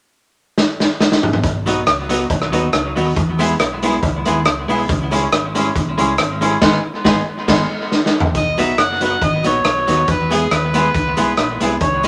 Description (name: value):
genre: ska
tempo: 139 BPM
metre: 4/4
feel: swing 53% on 8ths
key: B major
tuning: A4 = 440 Hz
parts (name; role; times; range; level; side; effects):
- raw garage drum kit; drums; 0.6-12.1 s; crash cymbal, hi-hat, kick drum, rim click, snare drum, toms; -20 LUFS; equal; tape echo
- fingered electric bass; bass; 1.4-12.1 s; F#1 to E2; -27 LUFS; equal; none
- cabasa; percussion; 1.4-12.1 s; none; -45 LUFS; equal; none
- archtop guitar, miked and amplified; accompaniment; 1.7-12.1 s; F#3 to E4; -23 LUFS; equal; tape echo
- bright upright piano; stabs; 1.7-12.1 s; B3 to G#4; -26 LUFS; equal; none
- overdriven harmonica; melody; 8.4-12.1 s; G#4 to F#5; -21 LUFS; equal; none
room: moderate studio reverb, RT60 0.8 s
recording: none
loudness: -17 LUFS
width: mono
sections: 0.0-1.4 A section; 1.4-8.4 B section; 8.4-12.1 C section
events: drum fill 0.6-1.4, 7.9-8.4; band accent 6.6-8.4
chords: 0.0 N.C.; 1.4 B; 3.2 E; 4.9 C#m; 6.6 G#m; 8.4 B; 10.1 E